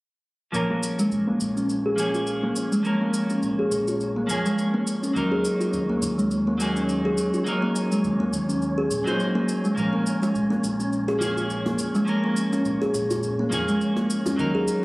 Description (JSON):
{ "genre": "organic downtempo", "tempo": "104 BPM", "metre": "4/4", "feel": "swing 56% on 16ths", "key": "Bb minor", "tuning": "A4 = 440 Hz", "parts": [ { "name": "clean electric guitar", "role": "accompaniment", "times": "0.5-14.8 s", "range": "F3 to C5", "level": "-28 LUFS", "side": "equal", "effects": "wide subtle chorus, low-pass filter, tape echo" }, { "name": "smooth synth bass", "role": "bass", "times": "0.5-14.5 s", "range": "F1 to Eb2", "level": "-33 LUFS", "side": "equal", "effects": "none" }, { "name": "shaker", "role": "drums", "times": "0.5-14.8 s", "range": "none", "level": "-36 LUFS", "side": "equal", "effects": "none" }, { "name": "wind-like tuned noise texture", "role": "texture", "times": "1.2-14.8 s", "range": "Db4 to Db5", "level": "-36 LUFS", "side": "equal", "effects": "built-in reverb" }, { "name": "kalimba", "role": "arpeggios", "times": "0.7-14.6 s", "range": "Ab3 to Ab4", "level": "-23 LUFS", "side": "equal", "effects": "low-pass filter, tape echo" }, { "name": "djembe", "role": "percussion", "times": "10.2-14.4 s", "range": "none", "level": "-34 LUFS", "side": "equal", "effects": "none" } ], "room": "moderate digital room reverb, RT60 1.0 s", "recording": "recorded on a phone in the room, club reverb, compression", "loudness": "-22 LUFS", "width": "side -21 dB against mid", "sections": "0.5-14.8 A section", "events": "filter sweep on analog synth bass 0.5-14.8; filter sweep on kalimba 0.5-14.8", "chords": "0.5 Bbm; 5.2 Ebm; 9.8 Bbm" }